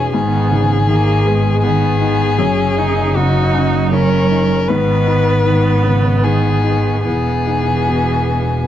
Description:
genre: neoclassical piano and strings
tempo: 78 BPM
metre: 3/4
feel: uneven beats, rubato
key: G# minor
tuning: A4 = 440 Hz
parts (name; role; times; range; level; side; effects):
- muted violin; melody; 0.0-8.7 s; F#4 to B4; -18 LUFS; left 4 dB; none
- muted cello; second line; 0.0-8.7 s; C#3 to F#3; -22 LUFS; right 6 dB; none
- felt-muted upright piano; accompaniment; 0.0-8.7 s; E2 to D#4; -21 LUFS; left 4 dB; none
- muted viola; accompaniment; 0.0-8.7 s; G#3 to D#4; -22 LUFS; right 4 dB; none
- muted double bass; bass; 0.0-8.7 s; E1 to G#1; -17 LUFS; equal; none
room: light reverb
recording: none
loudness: -12 LUFS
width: side -11 dB against mid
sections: 0.0-8.7 A section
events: none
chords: 0.1 G#m; 2.4 D#m7/F#; 4.7 G#m; 7.0 Emaj7

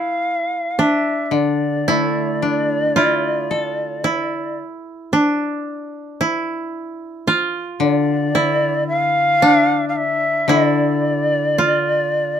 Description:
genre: japanese traditional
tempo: 56 BPM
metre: 4/4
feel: rubato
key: D minor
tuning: A4 = 440 Hz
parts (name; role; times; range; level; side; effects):
- breathy shakuhachi; melody; 0.0-12.4 s; D5 to F5; -19 LUFS; equal; none
- koto; second line; 0.0-12.4 s; D4 to F4; -21 LUFS; right 2 dB; none
- koto; accompaniment; 1.3-12.4 s; D3 to A4; -21 LUFS; left 3 dB; none
room: little or no reverb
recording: close, detailed microphones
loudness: -16 LUFS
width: side -9 dB against mid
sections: 0.0-12.4 A section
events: none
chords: none

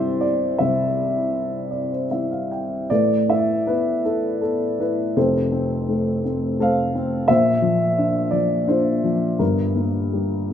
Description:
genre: classical, lyrical solo piano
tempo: 74-90 BPM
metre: 3/4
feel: rubato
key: C major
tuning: A4 = 441 Hz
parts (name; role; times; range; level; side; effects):
- dark upright piano; solo; 0.0-10.5 s; F1 to G5; -19 LUFS; left 1 dB; none
room: wet recital hall reverb, RT60 1.4 s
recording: minimal, uncompressed stereo recording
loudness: -18 LUFS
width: side -9 dB against mid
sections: 0.0-2.9 A section; 2.9-10.5 B section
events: upright piano fill 1.3-2.9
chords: 0.0 C; 2.9 Asus2; 5.2 Fadd9; 7.3 Bbadd9; 9.4 Gm

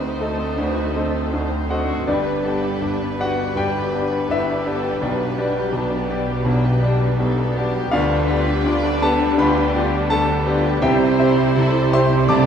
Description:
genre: classical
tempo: 82 BPM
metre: 4/4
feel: rubato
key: G major, C major from 7.9 s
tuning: A4 = 440 Hz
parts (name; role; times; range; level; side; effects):
- clear grand piano; melody; 0.0-12.5 s; G1 to D6; -20 LUFS; equal; none
- warm symphonic violin section; melody; 0.0-12.5 s; F4 to D5; -31 LUFS; left 5 dB; none
- warm studio violin section; second line; 0.0-12.5 s; G3 to D5; -27 LUFS; left 1 dB; none
- dark symphonic viola section; accompaniment; 0.0-12.5 s; G3 to E4; -26 LUFS; left 1 dB; none
- dark symphonic double bass section; bass; 0.0-12.5 s; G1 to D2; -28 LUFS; right 2 dB; none
- warm symphonic cello section; bass; 0.0-12.5 s; D2 to D3; -26 LUFS; right 1 dB; none
- timpani; percussion; 10.8-12.5 s; C3; -29 LUFS; right 2 dB; none
room: wet recital hall reverb, RT60 1.3 s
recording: recorded in a church or concert hall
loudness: -17 LUFS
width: side -8 dB against mid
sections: 0.0-12.5 A section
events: none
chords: 0.0 D7b9; 2.1 G; 5.0 G/B; 7.9 G7/D; 10.8 C

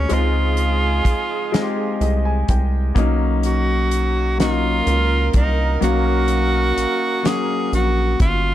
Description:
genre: slow six-eight R&B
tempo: 42 BPM (dotted quarters)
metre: 6/8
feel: straight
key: B lydian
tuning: A4 = 440 Hz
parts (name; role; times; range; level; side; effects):
- breathy tenor saxophone; melody; 0.0-8.5 s; C#4 to G#4; -22 LUFS; equal; none
- warm grand piano; accompaniment; 0.0-8.5 s; C#3 to G#5; -23 LUFS; left 4 dB; none
- rubbery square bass; bass; 0.0-8.5 s; G1 to C#2; -19 LUFS; equal; none
- warm horn section; stabs; 0.1-8.2 s; E#3 to A#4; -28 LUFS; right 10 dB; none
- damped 70s drum kit; drums; 0.1-8.4 s; hi-hat, kick drum, snare drum; -20 LUFS; equal; none
room: small room ambience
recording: none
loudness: -16 LUFS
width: side -12 dB against mid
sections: 0.0-8.5 A section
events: grand piano fill 1.5-3.0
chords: 0.1 C#maj9; 3.0 Bmaj9

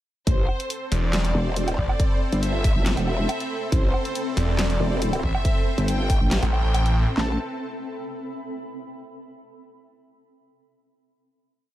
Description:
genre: heavy wobble dubstep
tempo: 139 BPM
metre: 4/4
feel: half-time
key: A minor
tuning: A4 = 442 Hz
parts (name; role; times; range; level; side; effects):
- warm symphonic violin section; melody; 0.3-7.3 s; C5 to A5; -32 LUFS; left 1 dB; tape echo
- supersaw pad; sustained chords; 0.3-7.4 s; C4 to C5; -34 LUFS; right 1 dB; sidechain pumping
- growl bass; bass; 0.3-7.4 s; E1 to A1; -23 LUFS; equal; chorus, overdrive
- big-room dance drum kit; drums; 0.3-7.3 s; handclaps, kick drum, snare drum; -22 LUFS; equal; none
- dubstep drum kit; drums; 0.3-6.9 s; handclaps, hi-hat, snare drum, woodblock; -29 LUFS; right 1 dB; none
- granular cloud pad; texture; 1.5-8.9 s; C4 to B5; -34 LUFS; equal; built-in reverb, sidechain pumping
- snarling distorted saw bass; bass; 0.9-7.1 s; E1 to A1; -22 LUFS; equal; distortion, overdrive
room: little or no reverb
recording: dark, warm production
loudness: -21 LUFS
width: side -14 dB against mid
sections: 0.3-7.2 drop; 7.2-8.9 final chord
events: drop 0.3-7.2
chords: 0.3 Amadd9

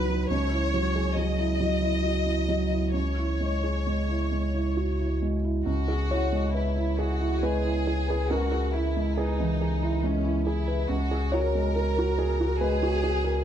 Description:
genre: neoclassical piano and strings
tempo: 68 BPM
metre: 3/4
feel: uneven beats, rubato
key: C# dorian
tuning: A4 = 441 Hz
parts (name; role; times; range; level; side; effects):
- rich chamber violin section; melody; 0.0-13.4 s; C#4 to D#5; -32 LUFS; left 3 dB; none
- felt-muted upright piano; accompaniment; 0.0-13.4 s; C#2 to C#5; -27 LUFS; right 3 dB; none
- pure sine sub bass; bass; 0.0-13.4 s; C#2; -28 LUFS; left 1 dB; none
room: light reverb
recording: dark, warm production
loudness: -24 LUFS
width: side -9 dB against mid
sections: 0.0-5.7 A section; 5.7-13.4 B section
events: none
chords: 0.3 C#m; 5.7 C#m7; 10.9 F#add9/C#

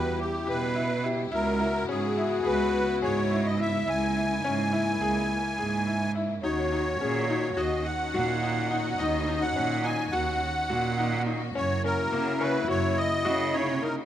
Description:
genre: contemporary instrumental, chamber music in an uneven meter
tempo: 211 BPM (eighths)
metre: 9/8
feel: straight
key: unclear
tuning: A4 = 440 Hz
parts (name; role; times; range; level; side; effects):
- musette accordion; melody; 0.0-14.0 s; G4 to G#5; -30 LUFS; right 1 dB; none
- warm French horn; second line; 0.0-14.1 s; D#4 to G#4; -32 LUFS; left 6 dB; none
- rich studio string section; sustained chords; 0.0-14.1 s; C#3 to F#4; -36 LUFS; left 2 dB; none
- bright baby grand piano; arpeggios; 0.0-14.0 s; A#3 to G#4; -33 LUFS; left 2 dB; none
- rich cello; bass; 0.0-14.0 s; C#2 to C#3; -30 LUFS; right 4 dB; none
room: light reverb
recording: close, detailed microphones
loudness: -24 LUFS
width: side -11 dB against mid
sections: 0.0-14.1 A section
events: none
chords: 0.0 Em6; 1.3 C#m7; 6.4 D#m7; 11.6 F#

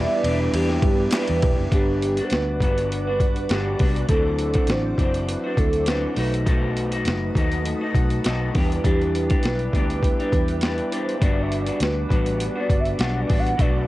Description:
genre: indie pop, bedroom pop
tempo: 101 BPM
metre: 4/4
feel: swing 55% on 16ths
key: G major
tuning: A4 = 440 Hz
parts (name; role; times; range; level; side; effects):
- hollow clarinet-like synth lead; melody; 0.0-13.9 s; G4 to F#5; -27 LUFS; right 1 dB; analog chorus, tape echo
- vibraphone with medium hard mallets; second line; 0.0-1.6 s; B4 to D5; -28 LUFS; right 2 dB; analog chorus, tape echo
- electric guitar through a small old amp; accompaniment; 0.0-13.9 s; B2 to G4; -28 LUFS; left 2 dB; wide subtle chorus, vibrato effect
- mellow tonewheel organ; accompaniment; 0.0-13.9 s; F#3 to B5; -28 LUFS; right 2 dB; slow rotary speaker, cassette tape
- ethereal airy pad; sustained chords; 0.0-13.9 s; B4 to D#6; -35 LUFS; right 2 dB; ensemble chorus, built-in reverb
- vintage muted fingered electric bass; bass; 0.0-13.9 s; E1 to G2; -26 LUFS; equal; none
- boom bap sampler-style drum kit; drums; 0.2-13.7 s; hi-hat, kick drum, ride cymbal, snare drum; -22 LUFS; equal; cassette tape
- group handclap; percussion; 1.1-1.3 s; none; -34 LUFS; left 2 dB; none
room: light reverb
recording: home recording on cassette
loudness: -19 LUFS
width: side -17 dB against mid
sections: 0.0-1.7 A section; 1.7-13.9 B section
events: none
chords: 0.0 Em7; 1.7 Gmaj7; 4.1 D9; 6.2 B7; 8.5 Em7; 11.2 Gmaj7

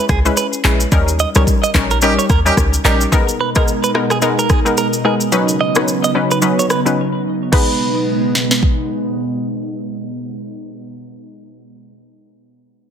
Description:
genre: afrobeats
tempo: 109 BPM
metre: 4/4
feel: swing 58% on 16ths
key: G# minor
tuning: A4 = 441 Hz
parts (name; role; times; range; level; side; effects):
- direct-recorded clean electric guitar; riff; 0.0-9.1 s; G#4 to D#5; -21 LUFS; right 6 dB; low-pass filter, ping-pong delay
- short 808-style bass; bass; 0.1-3.1 s; A#1 to D#2; -16 LUFS; equal; none
- afro-pop drum kit; drums; 0.1-8.8 s; crash cymbal, handclaps, kick drum, rim click, shaker, snare drum; -17 LUFS; equal; none
- analog pluck; accompaniment; 0.3-11.2 s; F#3 to B4; -18 LUFS; left 2 dB; chorus, low-pass filter
- warm horn section; second line; 2.0-3.0 s; C#4 to G4; -19 LUFS; right 3 dB; none
- airy breathy pad; sustained chords; 3.1-10.5 s; B2 to A#4; -20 LUFS; right 1 dB; chorus, low-pass filter
room: light reverb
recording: dense, heavily limited modern master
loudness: -13 LUFS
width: side -8 dB against mid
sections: 0.0-3.1 A section; 3.1-7.5 B section; 7.5-9.7 C section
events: band accent 0.9-3.1; filter sweep 3.1-7.5; break 7.0-7.5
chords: 0.0 C#m7; 0.9 D#7; 3.1 G#madd9; 5.3 Badd9; 7.5 G#m

